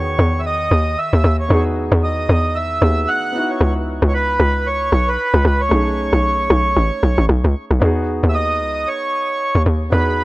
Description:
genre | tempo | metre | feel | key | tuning
amapiano | 114 BPM | 4/4 | swing 58% on 16ths | unclear | A4 = 440 Hz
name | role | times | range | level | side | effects
mellow accordion | melody | 0.0-10.2 s | B4 to F#5 | -20 LUFS | right 1 dB | tape echo
warm grand piano | accompaniment | 0.0-10.2 s | D#3 to G#4 | -25 LUFS | equal | none
tight log drum bass | bass | 0.0-10.2 s | A1 to E2 | -16 LUFS | equal | none
room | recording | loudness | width
small room reverb | dry, gritty hardware recording | -15 LUFS | side -20 dB against mid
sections
0.0-7.8 A section; 7.8-10.2 B section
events
drop 0.0-7.8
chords
0.0 Emaj9; 3.3 C#m11; 5.7 B13; 7.8 Emaj9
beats
0.45 0.97 | 1.50 2.03 2.55 3.08 | 3.61 4.13 4.66 5.19 | 5.71 6.24 6.76 7.29 | 7.82 8.34 8.87 9.40 | 9.92

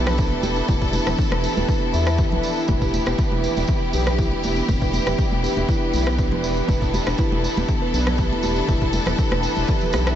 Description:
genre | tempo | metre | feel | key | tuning
afro house | 120 BPM | 4/4 | straight | E minor | A4 = 440 Hz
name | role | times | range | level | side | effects
rich studio string section | sustained chords | 0.0-10.2 s | E3 to A4 | -26 LUFS | left 2 dB | sidechain pumping
mellow synth brass | stabs | 0.0-10.2 s | D4 to B4 | -29 LUFS | right 4 dB | chorus, sidechain pumping, diffuse ambient delay
round analog bass | bass | 0.0-10.2 s | E1 to E2 | -24 LUFS | equal | sidechain pumping
electronic rim click | drums | 0.1-10.2 s | none | -32 LUFS | left 1 dB | none
congas | percussion | 0.1-10.0 s | none | -31 LUFS | right 3 dB | none
tambourine | percussion | 0.1-10.2 s | none | -35 LUFS | right 3 dB | none
electronic kick drum | drums | 0.2-9.8 s | none | -23 LUFS | equal | overdrive, studio reverb
buzzing kalimba | arpeggios | 0.4-10.2 s | B3 to E5 | -26 LUFS | equal | sidechain pumping, low-pass filter, diffuse ambient delay
room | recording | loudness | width
light reverb, small room ambience | nothing above 7.8 kHz | -18 LUFS | side -10 dB against mid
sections
0.0-10.2 A section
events
filter sweep on kalimba 0.0-10.2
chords
0.0 Em7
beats
0.19 | 0.69 1.19 1.69 2.19 | 2.69 3.19 3.69 4.19 | 4.69 5.19 5.69 6.19 | 6.69 7.19 7.69 8.19 | 8.69 9.19 9.69

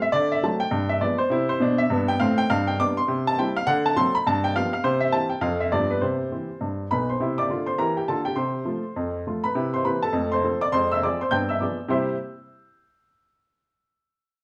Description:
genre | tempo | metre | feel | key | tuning
jazz, stride piano | 204 BPM | 4/4 | swing 62% on 8ths | C major | A4 = 440 Hz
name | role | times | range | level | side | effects
warm upright piano | solo | 0.0-12.1 s | B1 to G6 | -24 LUFS | equal | none
room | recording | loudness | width
moderate large studio reverb, RT60 0.8 s | band playing live in one room | -24 LUFS | mono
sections
0.0-7.2 A section; 7.2-11.9 B section; 11.9-13.1 C section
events
none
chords
0.1 D7; 0.7 G7b9; 1.3 C; 2.5 G; 3.1 C; 3.7 D7; 4.3 G7; 4.8 C; 5.4 F; 5.7 G7; 6.0 C; 7.2 C7; 8.4 F/C; 9.6 C; 10.1 F; 10.7 Fm; 11.3 G7b9; 11.9 C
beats
| 0.13 0.43 0.72 1.01 | 1.31 1.60 1.90 2.19 | 2.49 2.78 3.08 3.37 | 3.67 3.96 4.25 4.55 | 4.84 5.14 5.43 5.73 | 6.02 6.32 6.61 6.91 | 7.20 7.49 7.79 8.08 | 8.38 8.67 8.97 9.26 | 9.55 9.85 10.14 10.44 | 10.73 11.03 11.32 11.62 | 11.91

